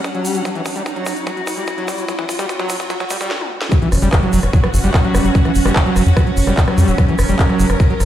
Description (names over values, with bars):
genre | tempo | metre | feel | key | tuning
psychedelic trance | 147 BPM | 4/4 | straight | F# major | A4 = 439 Hz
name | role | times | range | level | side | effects
evolving wavetable pad | sustained chords | 0.0-8.1 s | F#3 to F#4 | -24 LUFS | right 5 dB | phaser, built-in reverb, sidechain pumping
electronic kick drum | drums | 0.0-7.9 s | none | -16 LUFS | equal | high-pass filter on kick, high-pass filter on room
techno drum kit | drums | 0.0-8.1 s | handclaps, hi-hat, rim click, snare drum, toms | -24 LUFS | equal | none
egg shaker | percussion | 0.0-8.1 s | none | -32 LUFS | right 1 dB | none
riser and impact | sound effects | 0.0-5.3 s | none | -27 LUFS | right 1 dB | none
warm studio string section | texture | 0.0-8.1 s | C#4 to F#5 | -27 LUFS | left 2 dB | sidechain pumping
screaming distorted acid line | riff | 0.1-7.9 s | E3 to G3 | -21 LUFS | moving between left 4 dB and right 4 dB | distortion, chorus, auto-pan, sidechain pumping, ping-pong delay
tight sequencer bass | bass | 3.9-8.1 s | E1 to F#2 | -15 LUFS | equal | none
room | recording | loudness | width
light reverb, digital ambience | played on a big sound system in a bare room, stone room reverb, high-pass filter | -14 LUFS | side -12 dB against mid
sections
0.0-3.7 A section; 3.7-8.1 B section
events
build-up 0.0-3.7; drum fill 0.0-3.3, 3.3-3.7; riser 0.0-3.3; filter sweep on acid bass 0.0-3.7; drop 3.7-8.1; impact 3.7-5.3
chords
0.0 F#5